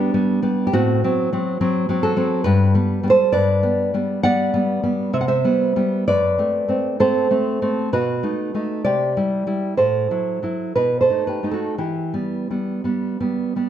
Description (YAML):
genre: romantic piece for solo classical guitar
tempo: 55-70 BPM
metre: 3/4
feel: rubato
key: unclear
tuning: A4 = 438 Hz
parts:
  - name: nylon-string guitar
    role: solo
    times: 0.0-13.7 s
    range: F#2 to F#5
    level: -17 LUFS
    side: equal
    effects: none
room: moderate recital hall reverb, RT60 1.7 s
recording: none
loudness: -17 LUFS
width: side -10 dB against mid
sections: 0.0-13.7 A section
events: none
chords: 0.0 G; 0.7 F#dim/A; 2.5 G; 5.1 Cmaj7; 6.1 F#dim; 7.9 B7; 8.8 C; 9.8 F#m7b5/A; 10.7 B7; 11.8 Em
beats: | 0.72 1.59 2.45 | 3.33 4.23 5.13 | 6.06 6.98 7.91 | 8.84 9.77 10.74 | 11.77 12.84